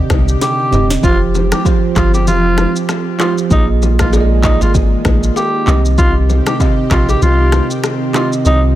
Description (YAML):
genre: afrobeats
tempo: 97 BPM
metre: 4/4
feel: swing 58% on 16ths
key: C minor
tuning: A4 = 440 Hz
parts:
  - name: bell-like tine electric piano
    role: accompaniment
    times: 0.0-8.8 s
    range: C3 to Eb5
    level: -18 LUFS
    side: right 6 dB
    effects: none
  - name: lush unison pad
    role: sustained chords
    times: 0.0-8.8 s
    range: D3 to G4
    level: -23 LUFS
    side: left 1 dB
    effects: chorus
  - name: punchy sub bass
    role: bass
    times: 0.1-8.8 s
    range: Eb1 to C2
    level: -14 LUFS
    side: equal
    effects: none
  - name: afro-pop drum kit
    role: drums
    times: 0.1-8.6 s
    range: finger snaps, handclaps, kick drum, rim click, shaker, snare drum, toms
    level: -16 LUFS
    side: equal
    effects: none
  - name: bongos and congas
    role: percussion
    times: 0.1-8.6 s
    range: none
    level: -23 LUFS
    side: left 6 dB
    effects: none
  - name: growling alto saxophone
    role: melody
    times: 0.4-8.6 s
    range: Eb4 to G4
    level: -19 LUFS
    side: equal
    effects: ping-pong delay
room: little or no reverb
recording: none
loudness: -11 LUFS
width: side -14 dB against mid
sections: 0.0-8.8 A section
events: drum fill 0.4-1.0; kick muted 8.5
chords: 0.0 Cm; 1.0 Fsus2; 3.5 Bb7sus4; 5.7 Cm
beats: 0.41 | 1.03 1.65 2.27 2.89 | 3.51 4.13 4.75 5.36 | 5.98 6.60 7.22 7.84 | 8.46